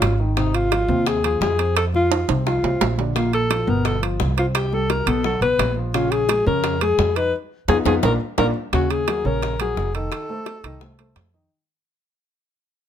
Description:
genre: Afro-Cuban jazz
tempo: 172 BPM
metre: 4/4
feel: straight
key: unclear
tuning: A4 = 440 Hz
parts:
  - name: mellow alto saxophone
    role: melody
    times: 0.0-11.1 s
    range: Eb4 to B4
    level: -22 LUFS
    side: left 2 dB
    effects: none
  - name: dark baby grand piano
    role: accompaniment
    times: 0.0-11.5 s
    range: Bb2 to Eb5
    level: -26 LUFS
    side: left 2 dB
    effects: none
  - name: upright bass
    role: bass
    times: 0.0-11.5 s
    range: F1 to F2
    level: -23 LUFS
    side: right 1 dB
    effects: none
  - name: bongos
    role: percussion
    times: 0.0-11.3 s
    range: none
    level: -30 LUFS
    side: left 6 dB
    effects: none
  - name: timbales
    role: percussion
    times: 0.0-11.3 s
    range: none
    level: -25 LUFS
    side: right 8 dB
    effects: none
room: light reverb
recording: none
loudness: -18 LUFS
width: side -9 dB against mid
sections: 0.0-8.7 A section; 8.7-11.5 B section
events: drum fill 2.1-3.2, 7.7-8.7; band accent 7.3-8.7; fade-out 8.7-11.5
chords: 0.4 Ab6; 1.8 F5; 3.2 Bb5; 3.9 G7; 4.6 C5; 5.2 B5; 5.9 Bbm7; 7.3 Fm7b5; 8.0 Bb; 8.7 Ebm9; 10.1 F7

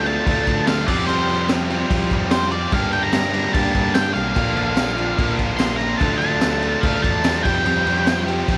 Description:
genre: classic rock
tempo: 146 BPM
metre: 4/4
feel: straight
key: unclear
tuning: A4 = 439 Hz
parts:
  - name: octave-fuzz lead guitar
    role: melody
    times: 0.0-8.2 s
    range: C5 to C6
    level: -25 LUFS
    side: equal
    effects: distortion, tape echo
  - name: picked steel-string acoustic guitar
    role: accompaniment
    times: 0.0-8.6 s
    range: F2 to G4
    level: -32 LUFS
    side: equal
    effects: none
  - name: tonewheel organ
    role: sustained chords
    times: 0.0-8.6 s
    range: G3 to F5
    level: -38 LUFS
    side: equal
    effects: none
  - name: crunchy overdriven guitar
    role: riff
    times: 0.0-8.6 s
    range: G2 to G4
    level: -28 LUFS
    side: equal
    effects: none
  - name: tight distorted guitar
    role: riff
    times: 0.0-8.6 s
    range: G2 to G4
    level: -29 LUFS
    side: equal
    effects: distortion
  - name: growling picked electric bass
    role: bass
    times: 0.0-8.6 s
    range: Bb1 to F3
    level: -28 LUFS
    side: equal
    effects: overdrive
  - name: raw garage drum kit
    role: drums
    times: 0.1-8.6 s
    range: crash cymbal, kick drum, snare drum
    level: -24 LUFS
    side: equal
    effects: none
  - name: tambourine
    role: percussion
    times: 0.7-8.2 s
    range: none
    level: -43 LUFS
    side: equal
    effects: none
room: light reverb, studio ambience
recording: none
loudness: -19 LUFS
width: mono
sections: 0.0-8.6 A section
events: none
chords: 0.0 Dm; 0.9 Fsus2; 2.7 Gm; 4.4 Bb; 6.0 Dm; 7.4 Fsus2

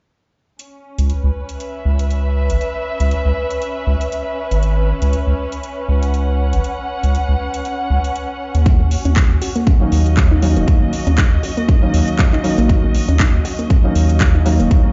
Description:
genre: deep house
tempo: 119 BPM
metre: 4/4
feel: swing 56% on 16ths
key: C# dorian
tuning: A4 = 441 Hz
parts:
  - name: house drum kit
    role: drums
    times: 0.6-14.8 s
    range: handclaps, hi-hat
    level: -28 LUFS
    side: equal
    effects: none
  - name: muted chamber string section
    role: texture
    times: 0.6-14.9 s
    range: C#4 to F#5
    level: -27 LUFS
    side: equal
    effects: sidechain pumping
  - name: round analog bass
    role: bass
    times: 1.0-14.7 s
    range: D#1 to D#2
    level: -17 LUFS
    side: equal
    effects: sidechain pumping
  - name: electronic kick drum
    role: drums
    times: 8.7-14.8 s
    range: none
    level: -16 LUFS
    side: equal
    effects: none
  - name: soft round pluck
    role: arpeggios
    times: 8.8-14.9 s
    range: A#3 to F#4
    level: -26 LUFS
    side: equal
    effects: chorus, sidechain pumping, dub echo
  - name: felt-muted upright piano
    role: stabs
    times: 9.8-14.9 s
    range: D#3 to D#4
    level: -22 LUFS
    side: equal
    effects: vintage 12-bit sampler grit, sidechain pumping, dub echo
room: little or no reverb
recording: played on a big sound system in a bare room, large studio reverb, nothing above 7.5 kHz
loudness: -16 LUFS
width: mono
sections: 0.6-14.9 A section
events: none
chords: 0.6 C#m7; 8.7 D#m7

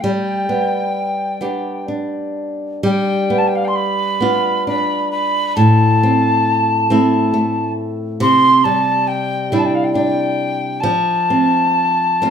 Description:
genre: celtic folk, Celtic slow air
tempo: 63-69 BPM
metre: 3/4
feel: rubato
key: G mixolydian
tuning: A4 = 441 Hz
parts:
  - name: mellow hollow mid whistle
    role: melody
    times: 0.0-12.3 s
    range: F5 to C6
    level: -17 LUFS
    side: equal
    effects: none
  - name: flamenco guitar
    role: accompaniment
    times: 0.0-12.3 s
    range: A2 to G4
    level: -17 LUFS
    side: equal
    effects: none
room: moderate large studio reverb, RT60 0.9 s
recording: band playing live in one room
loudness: -14 LUFS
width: side -7 dB against mid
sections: 0.0-2.8 A section; 2.8-12.3 A section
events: none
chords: 0.0 G; 2.8 G7; 5.6 Am; 8.2 Cadd9; 10.8 F

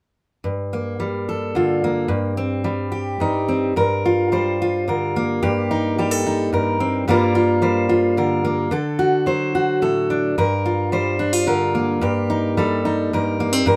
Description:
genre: folk, solo fingerstyle acoustic guitar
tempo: 109 BPM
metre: 3/4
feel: straight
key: G minor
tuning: A4 = 444 Hz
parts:
  - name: fingerpicked steel-string acoustic guitar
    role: solo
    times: 0.4-13.8 s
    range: G2 to C5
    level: -20 LUFS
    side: equal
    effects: none
room: light reverb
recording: none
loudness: -20 LUFS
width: mono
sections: 0.4-3.8 A section; 3.8-13.8 B section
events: none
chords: 0.4 Gm7; 2.1 Eb6/G; 3.8 Gm7; 5.4 Eb6/G; 7.1 Gm7; 8.7 D; 10.4 Gm7; 12.0 Eb/G

